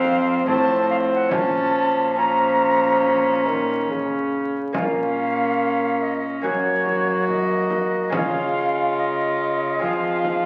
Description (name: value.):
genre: classical, renaissance-style consort dance.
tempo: 71 BPM.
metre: 4/4.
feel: straight.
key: Bb harmonic minor, Bb minor from 4.8 s.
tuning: A4 = 441 Hz.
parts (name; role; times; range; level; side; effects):
silver concert flute; melody; 0.0-10.5 s; Db5 to Bb5; -26 LUFS; equal; none.
warm viola; second line; 0.0-10.5 s; C4 to Gb4; -27 LUFS; equal; none.
lute; accompaniment; 0.0-10.5 s; F2 to Gb4; -33 LUFS; equal; none.
warm bassoon; accompaniment; 0.0-10.5 s; Db3 to Bb3; -26 LUFS; equal; none.
rich cello; bass; 0.0-10.5 s; F2 to F3; -31 LUFS; equal; none.
frame drum; percussion; 0.0-10.5 s; none; -34 LUFS; equal; none.
room: wet recital hall reverb, RT60 1.4 s.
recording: very old 78 rpm record, vinyl crackle.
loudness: -21 LUFS.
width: mono.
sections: 0.0-4.8 A section; 4.8-10.5 B section.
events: none.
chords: 0.0 F; 1.3 Bbm; 6.4 Gb; 8.1 Db; 9.8 Fm.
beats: 0.47 | 1.32 2.18 3.04 3.90 | 4.75 5.60 6.45 7.29 | 8.13 8.97 9.81.